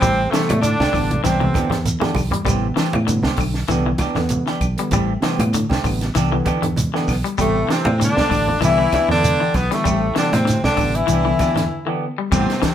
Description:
afrobeat; 98 BPM; 4/4; swing 55% on 16ths; A4 = 442 Hz
bright tenor saxophone; melody; 0.0-1.8, 7.4-12.7 s; A3 to E4; -21 LUFS; left 2 dB
bright trumpet; second line; 0.0-1.8, 7.5-12.7 s; A3 to E4; -28 LUFS; right 1 dB
raspy baritone saxophone; second line; 0.0-1.8, 7.4-12.7 s; A2 to E3; -28 LUFS; right 3 dB
overdriven tine electric piano; accompaniment; 0.0-12.6 s; C3 to D4; -28 LUFS; right 2 dB
electric guitar at the edge of break-up; arpeggios; 0.0-12.7 s; D3 to G3; -24 LUFS; left 5 dB
semi-hollow electric guitar; stabs; 0.0-12.5 s; E3 to G4; -27 LUFS; right 6 dB
fingered electric bass; bass; 0.0-12.7 s; A1 to A2; -22 LUFS; equal
compact cocktail drum kit; drums; 0.0-12.7 s; crash cymbal, hi-hat, kick drum, snare drum; -24 LUFS; right 1 dB
claves; percussion; 0.0-12.5 s; -35 LUFS; left 5 dB
congas; percussion; 0.0-12.5 s; -25 LUFS; right 1 dB
shekere; percussion; 0.0-12.7 s; -26 LUFS; right 2 dB
moderate studio reverb, RT60 0.7 s; band playing live in one room; -16 LUFS; side -10 dB against mid
0.0-12.3 A section
drum fill 1.2-2.5; break 11.7-12.3
0.0 Am7; 1.2 Cmaj9; 2.5 Am7; 3.7 Cmaj9; 4.9 Am7; 6.2 Cmaj9; 7.4 Am7; 8.6 Cmaj9; 9.9 Am7; 11.1 Cmaj9

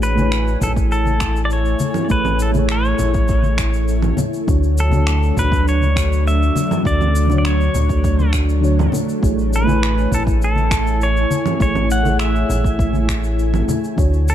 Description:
sunset chillout; 101 BPM; 4/4; straight; A major; A4 = 440 Hz
pedal steel guitar; melody; 0.0-14.3 s; A4 to F#5; -23 LUFS; equal; digital delay
mellow FM electric piano; accompaniment; 0.0-14.3 s; D3 to G#5; -24 LUFS; equal; chorus, auto-pan, ping-pong delay
soft string machine; sustained chords; 0.0-14.3 s; D3 to G#5; -24 LUFS; equal; ensemble chorus
warm sub bass; bass; 0.0-14.3 s; A1 to D2; -18 LUFS; equal
electronic shaker, finger snaps and congas; drums; 0.0-14.3 s; -26 LUFS; right 3 dB; overdrive
congas; percussion; 0.2-13.8 s; -25 LUFS; left 3 dB
electronic kick drum; drums; 0.6-14.1 s; -20 LUFS; equal; overdrive
light reverb; dark, warm production; -15 LUFS; side -10 dB against mid
0.0-14.3 A section
0.0 Amaj7; 4.5 Dmaj7; 9.2 Amaj7

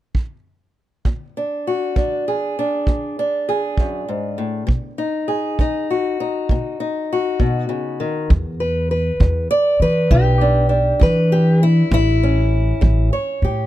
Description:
acoustic country blues, solo or duo; 66 BPM (dotted quarters); 12/8; straight; E mixolydian; A4 = 438 Hz
kick drum; drums; 0.1-13.0 s; -18 LUFS; right 1 dB
fingerpicked old ladder-braced acoustic guitar; melody; 1.1-13.7 s; E2 to D5; -19 LUFS; left 1 dB; plate reverb
upright bass; bass; 8.3-13.7 s; A1 to E3; -16 LUFS; equal
light reverb; dark, warm production; -16 LUFS; side -14 dB against mid
0.0-1.0 A section; 1.0-8.3 B section; 8.3-13.7 C section
0.0 N.C.; 1.0 E7; 4.7 B; 8.3 E5; 11.9 A

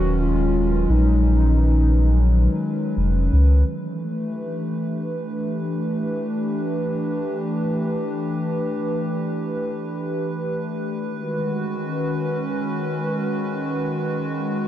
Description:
IDM; free time; A4 = 439 Hz
warbly nostalgic lead; melody; 0.0-3.2 s; D#4 to F#4; -26 LUFS; right 1 dB; chorus, tremolo, digital delay
hollow soft pad; sustained chords; 0.0-14.7 s; D#3 to B4; -23 LUFS; equal; chorus, vintage 12-bit sampler grit
warm sub bass; bass; 0.0-3.6 s; D#1 to C#2; -17 LUFS; equal
light reverb, digital ambience; -20 LUFS; side -12 dB against mid
0.0-3.7 A section; 3.7-14.7 B section
0.0 Bmaj9/D#; 3.7 Em7; 11.0 Badd9/D#

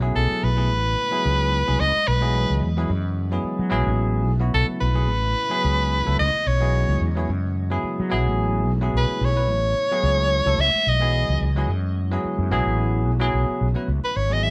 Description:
jazz; 109 BPM; 4/4; swing 55% on 16ths; A4 = 440 Hz
barky tine electric piano; accompaniment; 0.0-14.5 s; F#3 to B4; -29 LUFS; equal; lush chorus
glassy FM pad; sustained chords; 0.0-14.5 s; C#3 to D#5; -36 LUFS; equal
fretless electric bass; bass; 0.0-14.5 s; G#1 to F#3; -24 LUFS; equal
clear soprano saxophone; melody; 0.2-14.5 s; A4 to E5; -25 LUFS; equal
moderate club reverb, RT60 0.8 s; -22 LUFS; mono
0.0-13.9 A section
0.0 B9sus4; 0.7 Amaj9; 1.8 C#m9; 2.9 F#m9; 3.7 Amaj9; 6.2 C#m9; 7.3 F#m9; 8.1 Amaj9; 10.6 C#m9; 11.7 F#m9; 12.5 B9sus4; 13.9 C#m9

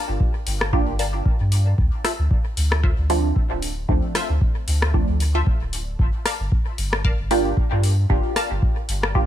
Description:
dub techno; 114 BPM; 4/4; swing 56% on 16ths; A4 = 441 Hz
filtered dub chord stab; riff; 0.0-8.5 s; F4 to A5; -30 LUFS; left 3 dB; phaser, sidechain pumping, dub echo
soft dub sub bass; bass; 0.1-9.2 s; D1 to G2; -22 LUFS; equal; tube saturation, sidechain pumping
electronic kick drum; drums; 0.2-9.3 s; -21 LUFS; equal
booming analog drum machine; drums; 0.5-9.1 s; hi-hat, rim click; -27 LUFS; left 2 dB; dub echo
filtered dub chord stab; stabs; 0.7-9.3 s; F3 to G4; -26 LUFS; right 3 dB; chorus, phaser, sidechain pumping, dub echo
digital ambience; -18 LUFS; side -11 dB against mid
0.0-9.3 A section
0.0 Gm7; 1.8 Dm7; 6.0 Gm7

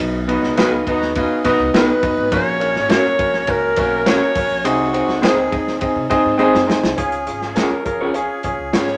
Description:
uptempo 1960s-style soul; 103 BPM; 4/4; straight; A4 = 439 Hz
clear baby grand piano; accompaniment; 0.0-9.0 s; A#2 to D#5; -21 LUFS; equal
upright bass; bass; 0.0-9.0 s; F#1 to B#2; -33 LUFS; equal
clear horn section; second line; 0.3-1.7 s; B3 to A#4; -29 LUFS; equal
crunchy breakbeat drum kit; drums; 0.3-8.9 s; hi-hat, kick drum, ride cymbal, snare drum; -25 LUFS; equal
electric guitar through a small old amp; stabs; 0.6-8.9 s; B3 to C#5; -23 LUFS; equal; spring reverb
clear alto saxophone; melody; 1.8-9.0 s; F#4 to C#5; -22 LUFS; equal
wet studio reverb, RT60 0.6 s; -17 LUFS; mono
0.0-7.0 A section; 7.0-9.0 B section
drum fill 6.4-7.0
0.0 B; 2.3 F#; 4.6 G#/B#; 7.0 C#

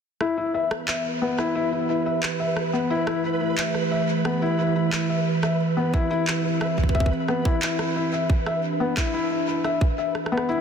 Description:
IDM; 89 BPM; 4/4; straight; E minor; A4 = 440 Hz
warbly tape-like pad; sustained chords; 0.8-10.6 s; E3 to G4; -27 LUFS; right 3 dB; chorus, built-in reverb, vintage 12-bit sampler grit
felt-muted upright piano; arpeggios; 0.2-10.6 s; B3 to E5; -25 LUFS; left 4 dB; low-pass filter, digital delay
electronic rim click and handclaps; drums; 0.2-10.5 s; -30 LUFS; right 1 dB; soft clipping on snare, tape echo
flickering grainy texture; texture; 0.6-10.6 s; B4; -33 LUFS; right 6 dB; built-in reverb
electronic kick drum; drums; 5.9-9.9 s; -21 LUFS; right 1 dB
light reverb; dense, heavily limited modern master; -21 LUFS; side -7 dB against mid
0.2-10.6 A section
filter sweep on ambient pad 0.2-10.6; kick drops out 10.3
0.2 Em; 5.6 C

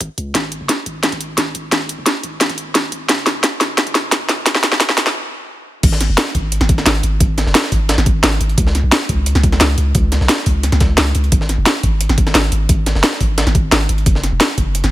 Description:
liquid drum and bass; 175 BPM; 4/4; straight; A4 = 440 Hz
long sustained 808-style bass; bass; 0.0-14.9 s; E1 to C#2; -17 LUFS; equal
drum and bass drum kit; drums; 0.0-14.9 s; crash cymbal, hi-hat, snare drum; -16 LUFS; equal; overdrive
electronic kick drum; drums; 0.0-14.6 s; -16 LUFS; equal; overdrive, high-pass filter on kick, high-pass filter on room
breakbeat sampler-style drum kit; drums; 5.8-14.8 s; hi-hat, snare drum; -23 LUFS; right 1 dB; high-pass filter on hats, high-pass filter on snare
little or no reverb; high-pass filter; -13 LUFS; side -15 dB against mid
0.0-5.8 A section; 5.8-14.9 B section
build-up 0.0-5.8; drum fill 0.3-5.2; stop 5.2-5.8; drop 5.8-14.9

